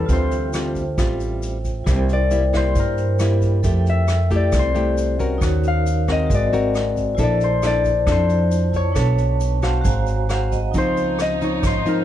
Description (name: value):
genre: bossa nova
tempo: 135 BPM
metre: 4/4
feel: straight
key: unclear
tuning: A4 = 442 Hz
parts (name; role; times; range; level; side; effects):
- Celtic harp; melody; 0.0-12.0 s; G4 to F5; -23 LUFS; left 4 dB; none
- nylon-string guitar; accompaniment; 0.0-12.0 s; G2 to F5; -25 LUFS; left 2 dB; none
- vibraphone with medium hard mallets; accompaniment; 0.0-12.0 s; Db4 to A#5; -28 LUFS; right 5 dB; none
- upright bass; bass; 0.0-11.8 s; G#1 to G2; -20 LUFS; right 1 dB; none
- vintage brush drum kit; drums; 0.1-12.0 s; hi-hat, kick drum, rim click; -26 LUFS; equal; none
- egg shaker; percussion; 0.1-12.0 s; none; -41 LUFS; left 4 dB; none
- warm symphonic violin section; second line; 10.8-12.0 s; Eb4; -30 LUFS; right 1 dB; none
room: little or no reverb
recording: dark, warm production, nothing above 10.7 kHz, faint mains hum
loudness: -17 LUFS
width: side -11 dB against mid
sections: 0.0-10.8 A section; 10.8-12.0 B section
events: harp solo 0.0-10.8; vibraphone fill 9.4-10.8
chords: 0.1 Dm11; 1.9 C7; 3.6 Fmaj9; 5.4 D#m7; 6.3 G#9; 7.2 Bbmaj9#11; 9.0 Bm9; 9.9 G#13; 10.8 Dbmaj9